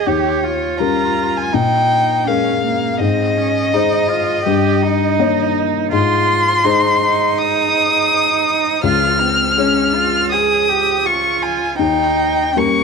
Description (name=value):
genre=neoclassical piano and strings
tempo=82 BPM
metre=4/4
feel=rubato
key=Ab major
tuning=A4 = 440 Hz
part: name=rich violin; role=melody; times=0.0-12.8 s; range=Db5 to F6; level=-17 LUFS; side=left 2 dB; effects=none
part: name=dark cello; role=second line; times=0.0-12.8 s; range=Bb3 to Ab4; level=-19 LUFS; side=right 14 dB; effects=none
part: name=felt-muted upright piano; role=accompaniment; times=0.0-12.8 s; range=Db2 to Db5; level=-18 LUFS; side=left 7 dB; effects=none
room=moderate echo chamber reverb, RT60 2.0 s, small room ambience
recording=1960s-style stereo with parts hard left and right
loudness=-13 LUFS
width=side -5 dB against mid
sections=0.0-12.8 A section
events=none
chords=0.1 Eb7; 1.5 Bbm7; 3.0 Ab; 4.5 Eb7/G; 5.9 Ab; 8.8 Db; 11.8 Eb7